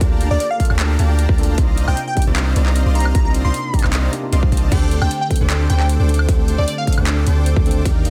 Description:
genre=future bass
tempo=153 BPM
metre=4/4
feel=half-time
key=unclear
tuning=A4 = 440 Hz
part: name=tine electric piano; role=accompaniment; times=0.0-8.1 s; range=C3 to A4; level=-28 LUFS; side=equal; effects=overdrive, sidechain pumping, tape echo
part: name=dense compressed supersaw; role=riff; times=0.0-8.1 s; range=C4 to D6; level=-28 LUFS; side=equal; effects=sidechain pumping, tape echo
part: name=long sustained 808-style bass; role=bass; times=0.0-8.1 s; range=C2 to Eb2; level=-19 LUFS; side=equal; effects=sidechain pumping
part: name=electronic kick drum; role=drums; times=0.0-7.9 s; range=none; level=-19 LUFS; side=equal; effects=none
part: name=trap drum kit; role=drums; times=0.0-8.1 s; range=crash cymbal, handclaps, hi-hat, ride cymbal, woodblock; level=-28 LUFS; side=equal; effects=overdrive
part: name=plucky unison lead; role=melody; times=0.3-6.9 s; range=D5 to C6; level=-26 LUFS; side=equal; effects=sidechain pumping, tape echo
room=digital ambience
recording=dense, heavily limited modern master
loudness=-17 LUFS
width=mono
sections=0.0-8.1 A section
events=none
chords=0.0 Gm9/D; 1.6 Cm11; 4.7 D7sus4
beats=| 0.01 0.40 0.80 1.19 | 1.58 1.97 2.36 2.76 | 3.15 3.54 3.93 4.33 | 4.72 5.11 5.50 5.89 | 6.29 6.68 7.07 7.46 | 7.85

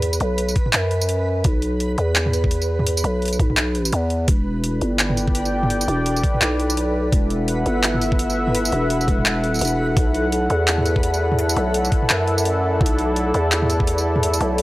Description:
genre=half-time drum and bass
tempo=169 BPM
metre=4/4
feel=swing 60% on 16ths, half-time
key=E minor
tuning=A4 = 438 Hz
part: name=growling 808-style bass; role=bass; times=0.0-14.6 s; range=E1 to F#2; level=-21 LUFS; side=equal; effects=none
part: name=drum and bass drum kit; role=drums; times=0.0-14.6 s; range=handclaps, hi-hat, tambourine, toms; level=-22 LUFS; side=equal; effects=overdrive, small room ambience
part: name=backwards swelling texture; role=texture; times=0.0-14.6 s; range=B4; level=-31 LUFS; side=equal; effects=built-in reverb
part: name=electronic kick drum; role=drums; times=0.6-13.9 s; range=none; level=-19 LUFS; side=equal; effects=overdrive, small room ambience
part: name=dark analog pad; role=sustained chords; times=4.3-14.6 s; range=E4 to G5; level=-23 LUFS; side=equal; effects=chorus, sidechain pumping
room=digital ambience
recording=dry, gritty hardware recording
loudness=-17 LUFS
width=side -18 dB against mid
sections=0.0-14.6 A section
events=none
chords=0.0 Bsus4; 4.3 Emadd9; 10.0 B7sus4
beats=| 0.03 0.38 0.74 1.09 | 1.45 1.80 2.16 2.51 | 2.87 3.22 3.58 3.93 | 4.29 4.64 5.00 5.35 | 5.71 6.06 6.42 6.77 | 7.13 7.48 7.84 8.19 | 8.55 8.90 9.26 9.61 | 9.97 10.32 10.68 11.03 | 11.39 11.74 12.10 12.45 | 12.81 13.16 13.52 13.87 | 14.23 14.58

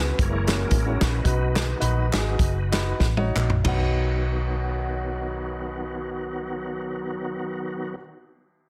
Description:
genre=uptempo gospel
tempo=90-117 BPM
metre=4/4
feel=swing 56% on 8ths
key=B major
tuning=A4 = 443 Hz
part: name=warm grand piano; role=accompaniment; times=0.0-8.0 s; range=B1 to F#5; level=-34 LUFS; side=equal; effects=none
part: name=bright tonewheel organ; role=sustained chords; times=0.0-8.0 s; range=D#3 to C#5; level=-33 LUFS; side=equal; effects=slow rotary speaker, chorus vibrato
part: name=hollow-body short-scale fingered electric bass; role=bass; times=0.0-7.9 s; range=F#1 to C#2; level=-28 LUFS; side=equal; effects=none
part: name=warm soul drum kit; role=drums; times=0.2-3.8 s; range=hi-hat, kick drum, ride cymbal, snare drum, toms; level=-27 LUFS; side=equal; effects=none
part: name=group handclap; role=percussion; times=0.5-4.0 s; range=none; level=-38 LUFS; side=equal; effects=none
room=light reverb, small room ambience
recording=dense, heavily limited modern master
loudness=-25 LUFS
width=mono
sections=0.0-3.7 A section; 3.7-8.7 B section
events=slowing down 0.0-3.7; tonewheel organ solo 0.0-3.7; drum fill 3.0-3.7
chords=0.2 F#7; 1.3 B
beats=0.19 0.71 | 1.25 1.81 2.39 3.01 | 3.66 4.33 5.00 5.66 | 6.33 7.00 7.67

